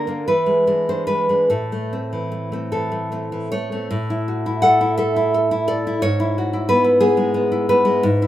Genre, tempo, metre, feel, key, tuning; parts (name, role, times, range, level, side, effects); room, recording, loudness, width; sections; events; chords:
romantic piece for solo classical guitar; 47-61 BPM (dotted quarters); 6/8; rubato; A minor, A major from 3.9 s; A4 = 439 Hz
nylon-string guitar; solo; 0.0-8.3 s; G#2 to F#5; -17 LUFS; equal
small room ambience; rough home demo mix; -17 LUFS; side -13 dB against mid
0.0-3.9 A section; 3.9-8.3 B section
0.3 E7; 1.5 Am; 3.9 A; 6.0 E/G#